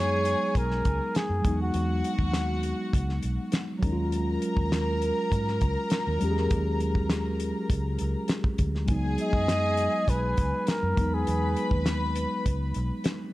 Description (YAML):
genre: lush 1970s-style soul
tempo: 101 BPM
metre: 4/4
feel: straight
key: Eb minor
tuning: A4 = 440 Hz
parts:
  - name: warm flugelhorn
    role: melody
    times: 0.0-2.2, 9.2-11.7 s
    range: F#4 to Eb5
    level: -29 LUFS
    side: equal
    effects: none
  - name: warm studio string section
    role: second line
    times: 0.0-13.0 s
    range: F#4 to B5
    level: -33 LUFS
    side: equal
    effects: tape echo
  - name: mellow tine electric piano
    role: accompaniment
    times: 0.0-13.3 s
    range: Fb3 to Ab4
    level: -30 LUFS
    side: equal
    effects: medium stereo tremolo
  - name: vintage muted fingered electric bass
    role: bass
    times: 0.0-12.9 s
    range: Cb2 to Ab2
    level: -29 LUFS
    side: equal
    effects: none
  - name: damped 70s drum kit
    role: drums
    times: 0.3-13.2 s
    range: hi-hat, kick drum, snare drum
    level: -28 LUFS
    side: equal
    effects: none
room: light reverb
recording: dark, warm production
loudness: -24 LUFS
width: side -17 dB against mid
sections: 0.0-13.3 A section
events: none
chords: 0.0 Db7sus4; 1.4 Emaj9; 3.8 Ebm11; 8.9 Db7sus4; 11.0 Emaj9